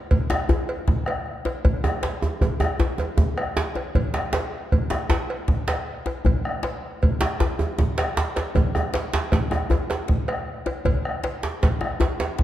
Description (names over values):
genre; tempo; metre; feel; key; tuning
west african traditional, West African drum ensemble; 104 BPM (dotted quarters); 12/8; straight; none; none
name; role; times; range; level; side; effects
bombo; percussion; 0.1-12.4 s; none; -24 LUFS; equal; none
cowbell; percussion; 0.1-12.4 s; none; -32 LUFS; right 2 dB; none
djembe; percussion; 0.1-12.4 s; none; -27 LUFS; left 3 dB; none
djembe; percussion; 0.3-12.4 s; none; -26 LUFS; right 2 dB; none
room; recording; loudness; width
moderate scoring stage reverb, RT60 1.9 s; dark, warm production; -21 LUFS; side -13 dB against mid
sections
0.0-12.4 A section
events
none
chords
none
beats
0.49 1.07 | 1.65 2.22 2.80 3.38 | 3.95 4.53 5.10 5.68 | 6.25 6.83 7.41 7.98 | 8.56 9.13 9.71 10.28 | 10.86 11.43 12.01